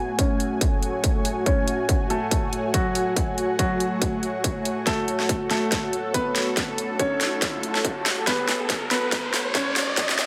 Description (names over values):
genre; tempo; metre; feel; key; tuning
heavy wobble dubstep; 141 BPM; 4/4; swing 55% on 16ths, half-time; F# minor; A4 = 441 Hz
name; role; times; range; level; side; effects
clear concert grand piano; melody; 0.0-10.3 s; F#3 to C#5; -30 LUFS; equal; low-pass filter, digital delay
lush unison pad; sustained chords; 0.0-10.3 s; A3 to G#5; -32 LUFS; equal; chorus, phaser, sidechain pumping
ethereal airy pad; texture; 0.1-10.3 s; F#4 to C#5; -34 LUFS; equal; ensemble chorus, built-in reverb, phaser, sidechain pumping
dubstep drum kit; drums; 0.2-10.3 s; hi-hat, snare drum; -28 LUFS; equal; overdrive, high-pass filter on hats, high-pass filter on snare
electronic kick drum; drums; 0.2-10.1 s; none; -28 LUFS; equal; distortion
riser; sound effects; 6.1-10.3 s; none; -33 LUFS; equal; none
room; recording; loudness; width
light reverb, digital ambience; high-pass filter; -24 LUFS; mono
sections
0.0-10.3 A section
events
build-up 0.0-10.3; filter sweep on grand piano 0.0-10.3; filter sweep 0.0-10.3; drum fill 4.9-10.3; riser 6.1-10.3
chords
0.0 F#madd9